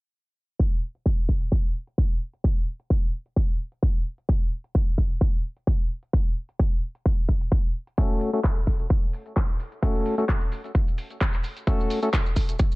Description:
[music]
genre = bass house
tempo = 130 BPM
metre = 4/4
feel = swing 54% on 16ths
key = unclear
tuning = A4 = 440 Hz
[part]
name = big-room dance drum kit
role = drums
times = 0.6-12.7 s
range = handclaps, hi-hat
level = -33 LUFS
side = equal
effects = overdrive
[part]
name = electronic kick drum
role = drums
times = 0.6-12.7 s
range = none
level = -22 LUFS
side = equal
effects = overdrive
[part]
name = percussive organ stab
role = stabs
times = 8.0-12.1 s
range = A3 to A4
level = -28 LUFS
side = left 1 dB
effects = chorus, sidechain pumping, tape echo
[part]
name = maracas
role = percussion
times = 8.0-12.8 s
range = none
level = -46 LUFS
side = right 3 dB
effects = none
[sound]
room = little or no reverb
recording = dark, warm production, low-pass filter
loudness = -22 LUFS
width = side -24 dB against mid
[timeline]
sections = 0.6-12.8 A section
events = filter sweep 0.6-12.8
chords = 0.6 N.C.; 8.0 F#m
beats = | 0.59 1.06 1.52 1.98 | 2.44 2.90 3.36 3.83 | 4.29 4.75 5.21 5.67 | 6.13 6.59 7.06 7.52 | 7.98 8.44 8.90 9.36 | 9.83 10.29 10.75 11.21 | 11.67 12.13 12.60

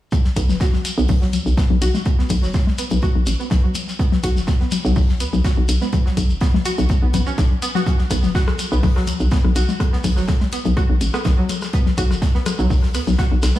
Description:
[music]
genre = minimal techno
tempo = 124 BPM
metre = 4/4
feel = swing 53% on 16ths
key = B minor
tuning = A4 = 440 Hz
[part]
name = deep reggae drum kit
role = drums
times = 0.1-13.6 s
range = hi-hat, snare drum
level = -36 LUFS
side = left 2 dB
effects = high-pass filter on hats, high-pass filter on snare, high-pass filter on room
[part]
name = electronic kick drum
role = drums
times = 0.1-13.3 s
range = none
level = -18 LUFS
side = equal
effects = none
[part]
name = booming analog drum machine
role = percussion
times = 0.1-13.6 s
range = congas, rim click, toms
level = -24 LUFS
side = left 5 dB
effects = tape echo
[part]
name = shekere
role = percussion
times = 0.1-13.6 s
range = none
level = -31 LUFS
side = equal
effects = none
[part]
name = string-like resonator pluck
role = riff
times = 0.4-13.6 s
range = F#3 to F#4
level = -27 LUFS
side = right 2 dB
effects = wide subtle chorus, sidechain pumping, diffuse ambient delay
[part]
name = hollow knocking FM bass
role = bass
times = 0.4-13.5 s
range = F#1 to D2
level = -19 LUFS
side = equal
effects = sidechain pumping
[part]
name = electronic hi-hat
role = drums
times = 0.4-13.5 s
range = none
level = -33 LUFS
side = left 2 dB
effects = none
[sound]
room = light reverb, small room ambience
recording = studio reverb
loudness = -16 LUFS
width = side -14 dB against mid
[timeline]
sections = 0.1-13.6 A section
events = none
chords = 0.1 B5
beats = | 0.12 0.61 1.09 1.57 | 2.06 2.54 3.03 3.51 | 3.99 4.48 4.96 5.45 | 5.93 6.41 6.90 7.38 | 7.87 8.35 8.83 9.32 | 9.80 10.29 10.77 11.25 | 11.74 12.22 12.70 13.19

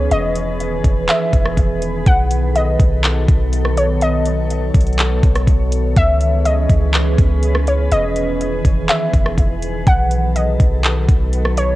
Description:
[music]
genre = hip hop, atmospheric cloud-rap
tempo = 123 BPM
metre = 4/4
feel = half-time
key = unclear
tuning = A4 = 445 Hz
[part]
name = warbly dusty pluck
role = melody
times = 0.0-11.8 s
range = C#5 to F#5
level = -21 LUFS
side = equal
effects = chorus, cassette tape, analog delay
[part]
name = glassy FM pad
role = sustained chords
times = 0.0-11.8 s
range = D#3 to C#5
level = -21 LUFS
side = equal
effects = ensemble chorus, built-in reverb, sidechain pumping
[part]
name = clean 808-style bass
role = bass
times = 0.0-11.8 s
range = E1 to C#2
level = -17 LUFS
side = equal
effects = none
[part]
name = smooth R&B drum kit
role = drums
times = 0.1-11.7 s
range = handclaps, hi-hat, kick drum, rim click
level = -16 LUFS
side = equal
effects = cassette tape
[sound]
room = little or no reverb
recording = home recording on cassette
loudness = -13 LUFS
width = side -16 dB against mid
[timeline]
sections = 0.0-11.8 A section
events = none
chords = 0.1 Emaj7; 2.1 B7; 6.0 C#m7; 7.9 Emaj7; 9.9 B7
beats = | 0.11 0.60 1.09 1.57 | 2.06 2.55 3.04 3.53 | 4.01 4.50 4.99 5.48 | 5.96 6.45 6.94 7.43 | 7.92 8.40 8.89 9.38 | 9.87 10.36 10.84 11.33

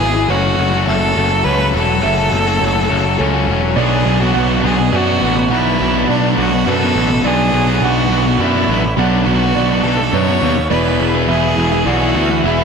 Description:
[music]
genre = rock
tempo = 104 BPM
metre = 3/4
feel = straight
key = B dorian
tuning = A4 = 440 Hz
[part]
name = clear violin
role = melody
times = 0.0-12.6 s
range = C#4 to C#5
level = -19 LUFS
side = right 2 dB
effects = diffuse ambient delay
[part]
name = bright symphonic string section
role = sustained chords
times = 0.0-12.6 s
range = G#4 to E6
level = -29 LUFS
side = right 1 dB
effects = none
[part]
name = felt-muted upright piano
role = arpeggios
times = 0.0-12.6 s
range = A4 to F#5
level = -24 LUFS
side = right 6 dB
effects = diffuse ambient delay
[part]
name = distorted electric guitar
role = riff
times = 0.0-12.6 s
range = B2 to G#4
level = -18 LUFS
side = left 11 dB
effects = distortion
[part]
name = fuzz picked electric bass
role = bass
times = 0.0-12.6 s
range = E1 to F#2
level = -18 LUFS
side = right 1 dB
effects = overdrive
[part]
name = sludgy distorted guitar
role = riff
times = 3.8-12.6 s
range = B2 to G#4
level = -19 LUFS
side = right 14 dB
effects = overdrive
[sound]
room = moderate plate reverb, RT60 2.4 s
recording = dreamy mix soaked in reverb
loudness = -12 LUFS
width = side -6 dB against mid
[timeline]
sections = 0.0-12.6 A section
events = none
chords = 0.3 F#m7; 3.8 Bm; 10.7 E7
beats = | 0.30 0.88 1.46 | 2.03 2.61 3.19 | 3.77 4.35 4.93 | 5.51 6.08 6.66 | 7.24 7.82 8.40 | 8.98 9.55 10.13 | 10.71 11.29 11.87 | 12.44

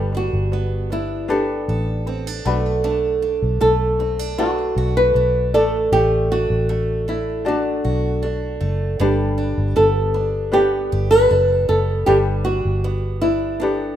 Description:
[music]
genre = pop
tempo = 78 BPM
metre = 4/4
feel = straight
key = G major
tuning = A4 = 442 Hz
[part]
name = ukulele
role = accompaniment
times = 0.0-14.0 s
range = D4 to D5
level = -23 LUFS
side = left 2 dB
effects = none
[part]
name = picked steel-string acoustic guitar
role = arpeggios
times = 0.0-14.0 s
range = G3 to A4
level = -26 LUFS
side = right 5 dB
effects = tape echo
[part]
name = vintage muted fingered electric bass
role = bass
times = 0.0-14.0 s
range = F#1 to B1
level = -22 LUFS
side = equal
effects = none
[part]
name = flamenco guitar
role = melody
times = 0.2-14.0 s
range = D4 to B4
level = -20 LUFS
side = equal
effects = none
[sound]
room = light reverb, small room reverb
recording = rough home demo mix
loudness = -17 LUFS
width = side -10 dB against mid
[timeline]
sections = 0.0-14.0 A section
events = none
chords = 0.0 Gadd9; 2.5 Bm7; 5.5 D/A; 9.0 Gadd9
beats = 0.53 1.30 2.07 | 2.84 3.61 4.38 5.15 | 5.92 6.69 7.46 8.23 | 9.00 9.77 10.54 11.30 | 12.07 12.84 13.61

